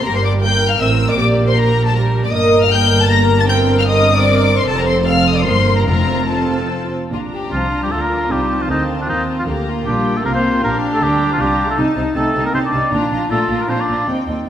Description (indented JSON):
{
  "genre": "quick classical-period movement for symphony orchestra",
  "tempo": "155 BPM",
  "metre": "3/4",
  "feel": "rubato",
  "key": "Bb major",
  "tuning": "A4 = 440 Hz",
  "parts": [
    { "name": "rich studio violin section", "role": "melody", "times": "0.0-14.5 s", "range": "F5 to Bb6", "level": "-21 LUFS", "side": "left 6 dB", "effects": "none" },
    { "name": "warm studio violin section", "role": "second line", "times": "0.0-14.5 s", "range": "Eb4 to Bb5", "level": "-23 LUFS", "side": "left 1 dB", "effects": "none" },
    { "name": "dark studio cello section", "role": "bass", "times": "0.0-14.4 s", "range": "Eb2 to Eb3", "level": "-22 LUFS", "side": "right 2 dB", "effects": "none" },
    { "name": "rich studio double bass section", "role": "bass", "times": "0.0-14.4 s", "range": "F1 to Eb2", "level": "-20 LUFS", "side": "right 2 dB", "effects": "none" },
    { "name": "warm studio viola section", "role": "accompaniment", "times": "0.1-14.5 s", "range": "G3 to Bb4", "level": "-20 LUFS", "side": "right 1 dB", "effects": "none" },
    { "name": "timpani", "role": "percussion", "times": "5.9-7.7, 12.9-13.5 s", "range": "F2 to Bb2", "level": "-24 LUFS", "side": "left 2 dB", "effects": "none" },
    { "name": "clear clarinet", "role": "second line", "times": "7.5-14.5 s", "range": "Bb3 to F4", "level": "-22 LUFS", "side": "left 1 dB", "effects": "none" },
    { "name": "clear oboe", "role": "second line", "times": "7.5-14.1 s", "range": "D4 to D5", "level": "-20 LUFS", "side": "equal", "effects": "none" },
    { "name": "warm French horn section", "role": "sustained chords", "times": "7.5-14.5 s", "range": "D3 to D4", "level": "-26 LUFS", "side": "left 3 dB", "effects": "none" }
  ],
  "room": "wet concert hall reverb, RT60 1.8 s",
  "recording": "none",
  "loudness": "-13 LUFS",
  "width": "side -10 dB against mid",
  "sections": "0.0-7.1 A section; 7.1-14.5 B section",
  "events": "none",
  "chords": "0.1 Gm; 1.2 Gm/Bb; 2.3 Gmadd9; 3.5 C5/G; 4.7 F; 5.5 Gm; 5.9 F; 7.1 Bb; 8.3 F7/C; 9.5 Bb; 11.8 Adim/C; 12.9 Bb",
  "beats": "| 0.05 0.43 0.81 | 1.18 1.57 1.95 | 2.34 2.72 3.11 | 3.50 3.89 4.28 | 4.67 5.07 5.46 | 5.88 6.31 6.72 | 7.13 7.53 7.92 | 8.31 8.70 9.09 | 9.48 9.87 10.25 | 10.63 11.01 11.40 | 11.78 12.16 12.54 | 12.92 13.30 13.69 | 14.09 14.48"
}